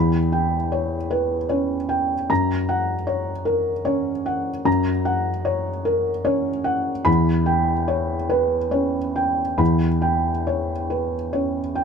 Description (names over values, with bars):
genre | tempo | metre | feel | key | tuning
neoclassical minimalist piano | 46-51 BPM (dotted quarters) | 6/8 | rubato | unclear | A4 = 440 Hz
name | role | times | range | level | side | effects
felt-muted upright piano | solo | 0.0-11.8 s | E2 to B5 | -19 LUFS | equal | none
room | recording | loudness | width
light reverb | none | -19 LUFS | side -6 dB against mid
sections
0.0-11.8 A section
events
none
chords
0.0 C#m7b5/E; 2.3 F#; 7.1 C#m7b5/E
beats
1.12 | 2.30 3.48 | 4.67 5.86 | 7.07 8.31 | 9.60 10.90